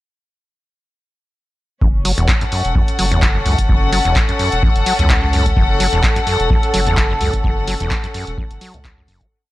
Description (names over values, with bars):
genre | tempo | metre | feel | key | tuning
acid house | 128 BPM | 4/4 | swing 55% on 16ths | F# minor pentatonic | A4 = 440 Hz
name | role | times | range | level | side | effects
acid bass, saw | riff | 1.8-9.3 s | E2 to A3 | -21 LUFS | equal | overdrive, sidechain pumping, tape echo
saturated sub bass | bass | 1.8-9.3 s | E1 to C#2 | -20 LUFS | equal | tube saturation, sidechain pumping
electronic kick drum | drums | 1.8-9.3 s | none | -17 LUFS | equal | studio reverb
warm studio string section | texture | 1.8-9.3 s | C#4 to F#5 | -20 LUFS | left 3 dB | sidechain pumping
punchy analog drum machine | drums | 2.0-9.3 s | handclaps, hi-hat | -22 LUFS | equal | studio reverb
warm analog pad | sustained chords | 5.6-9.3 s | A4 | -24 LUFS | right 1 dB | chorus, sidechain pumping
room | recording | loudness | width
little or no reverb | dry, gritty hardware recording, transformer saturation | -13 LUFS | side -16 dB against mid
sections
1.8-9.3 groove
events
fade-out 6.8-9.3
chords
1.8 F#m